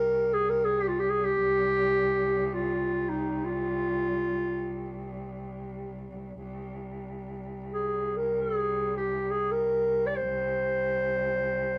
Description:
Turkish makam ensemble; free time; C makam ussak; A4 = 440 Hz
mellow clarinet; melody; 0.0-11.8 s; Eb4 to D5-33c; -28 LUFS; equal
warm cello; drone; 0.0-11.8 s; C2; -38 LUFS; equal
light reverb; close, detailed microphones; -28 LUFS; mono
0.0-11.8 A section
free time

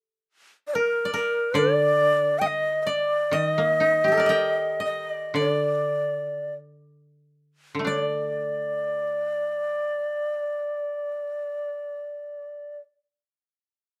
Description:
japanese traditional; 45-74 BPM; 4/4; rubato; D miyako bushi; A4 = 442 Hz
breathy long shakuhachi; melody; 0.7-12.8 s; Bb4 to G5; -26 LUFS; equal
koto; second line; 0.8-12.8 s; G4 to G5; -32 LUFS; equal
koto; accompaniment; 1.5-12.8 s; D3 to Bb4; -30 LUFS; equal
moderate small room reverb, RT60 0.5 s; -25 LUFS; mono
0.0-7.9 A section; 7.9-12.8 B section
slowing down 0.0-7.9
0.74 1.57 2.44 | 3.34 4.31 5.38 6.57 | 7.87 9.15 10.37 11.59

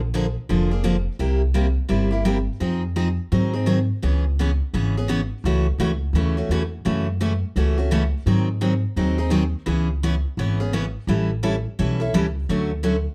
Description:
acoustic string swing (jazz manouche); 170 BPM; 4/4; swing 62% on 8ths; C# minor from 4.0 s; A4 = 441 Hz
upright bass; bass; 0.0-13.1 s; F1 to Ab2; -25 LUFS; equal
picked steel-string acoustic guitar; accompaniment; 0.1-13.0 s; C3 to A4; -25 LUFS; equal
light reverb; dark, warm production; -22 LUFS; mono
0.0-4.0 A section; 4.0-13.1 B section
0.0 Bb7; 1.2 C7; 2.6 Fm7; 3.3 Ab7; 4.0 C#m7; 5.4 A6/C#; 6.9 F#m7; 8.3 G#7; 9.7 C#m7; 11.1 A7; 12.5 Dmaj7
0.14 0.49 0.85 | 1.20 1.55 1.91 2.26 | 2.61 2.97 3.32 3.67 | 4.03 4.38 4.73 5.09 | 5.44 5.79 6.14 6.50 | 6.85 7.20 7.56 7.91 | 8.26 8.62 8.97 9.32 | 9.68 10.03 10.38 10.73 | 11.09 11.44 11.79 12.14 | 12.50 12.85

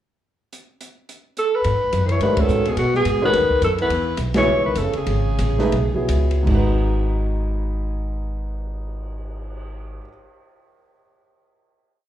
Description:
modal jazz; 149-214 BPM; 4/4; swing 59% on 8ths; G# phrygian; A4 = 439 Hz
open jazz drum kit; drums; 0.5-9.6 s; crash cymbal, cymbal swell, hi-hat, kick drum, ride cymbal, snare drum; -29 LUFS; equal
clear alto saxophone; melody; 1.4-6.1 s; F#4 to C#5; -20 LUFS; equal; plate reverb, slapback echo
upright bass; bass; 1.6-10.0 s; F#1 to B2; -22 LUFS; equal
breathy tenor saxophone; second line; 2.0-6.1 s; B2 to E3; -25 LUFS; left 2 dB; plate reverb, slapback echo
warm grand piano; accompaniment; 2.2-10.1 s; G#2 to B#4; -25 LUFS; right 2 dB; plate reverb, slapback echo
light reverb; live gig heard through the venue's PA, club reverb; -18 LUFS; side -11 dB against mid
0.5-1.6 pickup bar; 1.6-6.5 A section; 6.5-9.7 final chord
band accent 2.4, 4.3; slowing down 3.9-6.5
0.5 N.C.; 1.6 G#m7; 3.9 C#m; 6.5 G#m7
| 0.53 0.81 1.09 1.37 | 1.65 1.93 2.21 2.49 | 2.77 3.06 3.34 3.62 | 3.90 4.18 4.47 4.77 | 5.08 5.39 5.73 6.09 | 6.48 6.88 7.28 7.68 | 8.09 8.49 8.89 9.29

